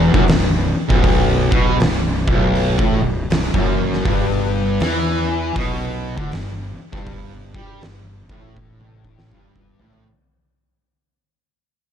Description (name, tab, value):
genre	stoner and doom metal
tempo	80 BPM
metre	4/4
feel	swing 64% on 8ths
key	unclear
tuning	A4 = 439 Hz
part	fuzz guitar	riff	0.0-10.1 s	B1 to G3	-20 LUFS	equal	distortion
part	fuzz fingered electric bass	bass	0.0-10.0 s	B0 to G2	-23 LUFS	equal	overdrive
part	oversized low-tuned drum kit	drums	0.1-10.1 s	hi-hat, kick drum, snare drum, toms	-20 LUFS	equal	none
room	studio reverb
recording	dark, warm production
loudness	-16 LUFS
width	side -9 dB against mid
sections	0.0-10.1 A section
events	fade-out 0.0-10.1; drum fill 8.6-10.1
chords	0.0 B5; 4.1 G5